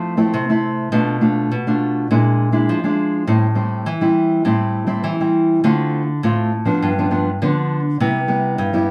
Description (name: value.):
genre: samba.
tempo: 102 BPM.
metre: 4/4.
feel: straight.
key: unclear.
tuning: A4 = 440 Hz.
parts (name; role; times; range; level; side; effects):
nylon-string guitar; solo; 0.0-8.9 s; G2 to F4; -18 LUFS; equal; none.
room: wet studio reverb, RT60 0.5 s.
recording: band playing live in one room.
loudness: -18 LUFS.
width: mono.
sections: 0.0-8.9 A section.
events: none.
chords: 0.0 Fmaj7; 0.9 Bm7b5; 2.1 Bb7#11; 3.3 Am7; 5.6 Dm7; 6.8 G7; 8.0 Cmaj7.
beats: 0.35 | 0.94 1.53 2.11 2.70 | 3.29 3.88 4.47 5.06 | 5.64 6.23 6.82 7.41 | 8.00 8.59.